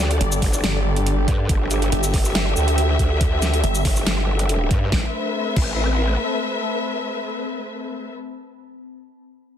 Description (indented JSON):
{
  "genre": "heavy wobble dubstep",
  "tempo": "140 BPM",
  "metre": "4/4",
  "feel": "half-time",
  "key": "A minor",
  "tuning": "A4 = 438 Hz",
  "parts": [
    { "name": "dark studio string section", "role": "sustained chords", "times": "0.0-8.1 s", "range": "A3 to E5", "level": "-26 LUFS", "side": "left 3 dB", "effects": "sidechain pumping" },
    { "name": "growl bass", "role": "bass", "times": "0.0-6.2 s", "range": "G1 to G2", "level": "-21 LUFS", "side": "equal", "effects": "chorus, overdrive" },
    { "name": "warbly tape-like pad", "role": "texture", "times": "0.0-8.2 s", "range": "C4 to B5", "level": "-29 LUFS", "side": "right 1 dB", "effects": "chorus, built-in reverb, sidechain pumping" },
    { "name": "dubstep drum kit", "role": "drums", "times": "0.1-5.7 s", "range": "crash cymbal, hi-hat, shaker, snare drum", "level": "-25 LUFS", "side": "equal", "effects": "none" },
    { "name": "snarling distorted saw bass", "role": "bass", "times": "0.2-3.8 s", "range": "G1", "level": "-21 LUFS", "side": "equal", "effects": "overdrive" },
    { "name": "electronic kick drum", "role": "drums", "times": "0.4-5.7 s", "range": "none", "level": "-21 LUFS", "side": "equal", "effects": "overdrive" }
  ],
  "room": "digital ambience",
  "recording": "dense, heavily limited modern master",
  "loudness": "-18 LUFS",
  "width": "side -9 dB against mid",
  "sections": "0.0-4.9 A section; 4.9-8.4 B section",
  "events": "drop 0.0-4.9",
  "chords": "0.0 Gsus2; 4.9 Amadd9",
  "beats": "0.21 0.64 1.06 | 1.49 1.92 2.35 2.78 | 3.21 3.64 4.07 4.49 | 4.92 5.35 5.78 6.21 | 6.64 7.07 7.49 7.92"
}